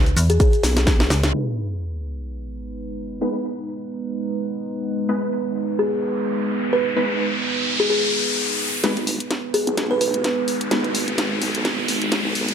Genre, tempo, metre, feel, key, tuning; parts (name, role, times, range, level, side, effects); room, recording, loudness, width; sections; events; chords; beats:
bass house; 128 BPM; 4/4; swing 56% on 16ths; G# minor; A4 = 440 Hz
metallic FM bass; bass; 0.0-1.3 s; C#2 to E2; -18 LUFS; equal; tube saturation, sidechain pumping
garage drum kit; drums; 0.1-1.3, 8.8-12.5 s; hi-hat, shaker, snare drum; -24 LUFS; equal
buzzing kalimba; melody; 0.3-0.5, 5.8-10.1 s; G#4 to B4; -24 LUFS; equal; digital delay
electronic kick drum; drums; 0.4-1.0 s; -18 LUFS; equal
vowel-sweep wobble bass; bass; 0.6-1.1, 8.8-12.5 s; G#1 to B1; -25 LUFS; equal; chorus, sidechain pumping, high-pass filter
dark analog pad; sustained chords; 2.3-12.5 s; G#3 to B4; -26 LUFS; right 2 dB; chorus, phaser, sidechain pumping
orchestra-hit-like synth stab; stabs; 1.3-10.8 s; G#3 to B4; -26 LUFS; equal; built-in reverb, sidechain pumping, digital delay
sub drop and riser; sound effects; 1.3-12.5 s; -25 LUFS; equal
light reverb, digital ambience; low-pass filter; -19 LUFS; side -7 dB against mid
0.0-1.3 A section; 1.3-8.8 B section; 8.8-12.5 C section
drop 0.0-1.3; drum fill 0.6-1.3, 8.8-12.5; band accent 1.2; impact 1.3-3.2; filter sweep on synth stab 1.3-8.8; filter sweep 1.3-8.8, 8.8-12.5; riser 6.0-8.8, 8.8-12.5; build-up 8.8-12.5
0.0 C#m7; 1.3 G#m
0.40 0.87 | 1.34 1.81 2.27 2.74 | 3.21 3.68 4.15 4.62 | 5.09 5.56 6.03 6.49 | 6.96 7.43 7.90 8.37 | 8.84 9.31 9.78 10.24 | 10.71 11.18 11.65 12.12